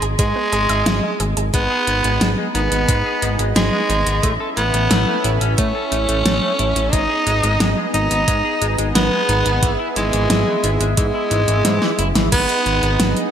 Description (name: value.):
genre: synthwave.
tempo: 89 BPM.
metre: 4/4.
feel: straight.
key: G# phrygian.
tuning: A4 = 439 Hz.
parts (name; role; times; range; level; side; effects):
growling tenor saxophone; melody; 0.0-13.2 s; G#3 to D#4; -19 LUFS; equal; digital delay.
analog pluck; arpeggios; 0.0-1.4 s; G#3 to E5; -28 LUFS; right 4 dB; chorus, cassette tape, ping-pong delay.
fat analog bass; bass; 0.0-13.1 s; F#1 to A2; -20 LUFS; equal; sidechain pumping.
pop drum kit; drums; 0.0-13.3 s; crash cymbal, hi-hat, snare drum; -21 LUFS; equal; overdrive, gated reverb.
electronic kick drum; drums; 0.2-12.5 s; none; -20 LUFS; equal; overdrive.
soft supersaw; sustained chords; 1.5-13.3 s; B3 to E5; -25 LUFS; right 2 dB; sidechain pumping.
semi-hollow electric guitar; riff; 1.5-12.3 s; E3 to A4; -28 LUFS; left 3 dB; wide subtle chorus, ping-pong delay.
room: moderate lush hall reverb, RT60 2.4 s.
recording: bright 1980s-style digital production.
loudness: -15 LUFS.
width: side -9 dB against mid.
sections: 0.0-12.3 A section.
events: drum fill 11.7-12.3.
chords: 0.0 E/G#; 1.5 G#m; 4.2 A; 6.9 G#m; 9.6 E/G#; 12.3 G#m.